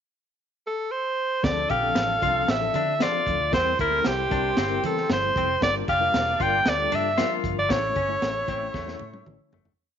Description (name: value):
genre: uptempo 1960s-style soul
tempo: 115 BPM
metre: 4/4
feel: straight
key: D minor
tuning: A4 = 440 Hz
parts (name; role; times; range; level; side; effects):
- edgy alto saxophone; melody; 0.7-9.3 s; G4 to G5; -24 LUFS; right 1 dB; none
- mellow horn section; second line; 1.4-9.5 s; F3 to E5; -36 LUFS; right 11 dB; none
- reed electric piano; accompaniment; 1.4-9.7 s; F3 to C#5; -32 LUFS; left 12 dB; fast tremolo
- vintage muted picked electric bass; bass; 1.4-9.7 s; E1 to E3; -33 LUFS; right 1 dB; none
- crunchy breakbeat drum kit; drums; 1.4-9.8 s; hi-hat, kick drum, snare drum, toms; -29 LUFS; right 1 dB; none
- congas; percussion; 1.5-9.6 s; none; -40 LUFS; right 14 dB; none
- semi-hollow electric guitar; riff; 1.7-9.7 s; A3 to G4; -32 LUFS; left 11 dB; none
room: moderate echo chamber reverb, RT60 1.7 s, studio ambience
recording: 1960s-style stereo with parts hard left and right, nothing above 7.5 kHz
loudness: -21 LUFS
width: side -8 dB against mid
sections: 0.0-1.4 pickup bar; 1.4-9.8 verse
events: fade-out 7.7-9.8; drum fill 8.7-9.8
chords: 0.0 N.C.; 1.4 Dm7; 3.5 C7; 5.6 Gm7; 7.7 A